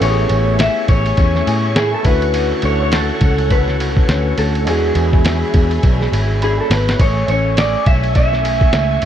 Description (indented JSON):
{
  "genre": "indie pop, bedroom pop",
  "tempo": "103 BPM",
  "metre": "4/4",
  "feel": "swing 60% on 16ths",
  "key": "A major",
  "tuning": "A4 = 440 Hz",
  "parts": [
    { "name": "electric guitar through a small old amp", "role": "melody", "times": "0.0-9.1 s", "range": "G#4 to E5", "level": "-19 LUFS", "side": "equal", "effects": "lush chorus, tape echo" },
    { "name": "barky tine electric piano", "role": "accompaniment", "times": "0.0-7.0 s", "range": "G#3 to B5", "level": "-25 LUFS", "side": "right 5 dB", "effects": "overdrive, cassette tape, plate reverb" },
    { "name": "electric guitar through a small old amp", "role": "accompaniment", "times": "0.0-9.1 s", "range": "D3 to G#4", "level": "-25 LUFS", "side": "left 4 dB", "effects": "lush chorus, warbly pitch drift, plate reverb" },
    { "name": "string machine, violas", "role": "sustained chords", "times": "0.0-9.1 s", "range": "A3 to C#6", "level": "-25 LUFS", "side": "equal", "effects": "ensemble chorus" },
    { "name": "vintage muted picked electric bass", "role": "bass", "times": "0.0-9.1 s", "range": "G#1 to A2", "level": "-18 LUFS", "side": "equal", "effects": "none" },
    { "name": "lo-fi sampler-style drum kit", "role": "drums", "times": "0.0-9.1 s", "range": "kick drum, ride cymbal, snare drum", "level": "-17 LUFS", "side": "equal", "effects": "none" }
  ],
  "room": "light reverb",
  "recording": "dark, warm production",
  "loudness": "-13 LUFS",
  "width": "side -10 dB against mid",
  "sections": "0.0-7.0 A section; 7.0-9.1 A section",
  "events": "tine electric piano fill 6.1-7.0; drum fill 6.4-7.0",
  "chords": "0.0 Amaj7; 2.0 Dmaj7; 4.7 E7; 7.0 Amaj7"
}